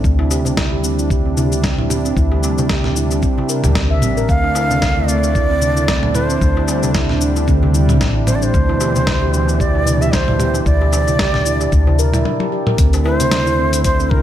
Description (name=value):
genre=organic downtempo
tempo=113 BPM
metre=4/4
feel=swing 56% on 16ths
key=unclear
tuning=A4 = 440 Hz
part: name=warm analog pad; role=sustained chords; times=0.0-14.2 s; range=B2 to E4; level=-23 LUFS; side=equal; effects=chorus, sidechain pumping
part: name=handpan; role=arpeggios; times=0.0-14.2 s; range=C4 to E5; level=-22 LUFS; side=right 3 dB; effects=low-pass filter, ping-pong delay
part: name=upright bass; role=bass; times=0.0-14.2 s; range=A1 to D2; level=-18 LUFS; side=equal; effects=none
part: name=dusty soul sampler-style drum kit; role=drums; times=0.0-14.1 s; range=hi-hat, shaker, snare drum, toms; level=-21 LUFS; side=left 1 dB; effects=none
part: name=electronic kick drum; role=drums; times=0.0-14.2 s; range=none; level=-18 LUFS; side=equal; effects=none
part: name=darbuka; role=percussion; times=0.2-14.2 s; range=none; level=-26 LUFS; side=left 3 dB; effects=none
part: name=Native American-style cedar flute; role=melody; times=4.3-14.2 s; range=Bb4 to F5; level=-20 LUFS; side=right 1 dB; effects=ping-pong delay
room=light reverb, studio ambience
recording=none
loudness=-13 LUFS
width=side -11 dB against mid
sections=0.0-12.8 A section; 12.8-14.2 B section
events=filter sweep on handpan 0.0-12.8; break 12.3-12.8; drum fill 12.3-12.8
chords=0.0 C/D; 4.3 D7sus2; 8.5 Em7/D; 12.8 Dsus2